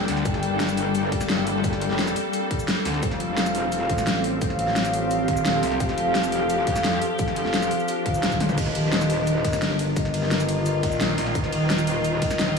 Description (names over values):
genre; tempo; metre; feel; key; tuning
dark technical drum and bass; 173 BPM; 4/4; straight; unclear; A4 = 439 Hz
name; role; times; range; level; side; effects
swarming drone; sustained chords; 0.0-12.6 s; Eb3 to A4; -28 LUFS; left 1 dB; built-in reverb, sidechain pumping
dark brass ensemble; stabs; 0.0-12.6 s; Eb4 to G5; -28 LUFS; left 2 dB; tape echo
growling FM bass; bass; 0.0-0.2, 2.9-5.8, 9.4-11.3 s; Eb1 to D2; -27 LUFS; equal; none
warbly tape-like pad; texture; 0.0-12.6 s; Bb3 to G5; -30 LUFS; equal; chorus, built-in reverb, sidechain pumping
dubstep drum kit; drums; 0.1-12.6 s; crash cymbal, hi-hat, ride cymbal, shaker, snare drum, toms; -27 LUFS; left 1 dB; none
metallic wobble bass; bass; 0.3-12.6 s; Eb1 to F2; -27 LUFS; equal; distortion, chorus, overdrive, sidechain pumping
electronic kick drum; drums; 0.3-12.3 s; none; -28 LUFS; equal; none
room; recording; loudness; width
light reverb, digital ambience; studio ambience; -21 LUFS; side -5 dB against mid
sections
0.0-12.6 A section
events
drum fill 8.4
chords
0.0 Gm; 3.0 F; 8.6 Eb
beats
| 0.25 0.60 0.95 1.29 | 1.64 1.99 2.33 2.68 | 3.03 3.38 3.72 4.07 | 4.42 4.76 5.11 5.46 | 5.80 6.15 6.50 6.84 | 7.19 7.54 7.88 8.23 | 8.58 8.92 9.27 9.62 | 9.96 10.31 10.66 11.01 | 11.35 11.70 12.05 12.39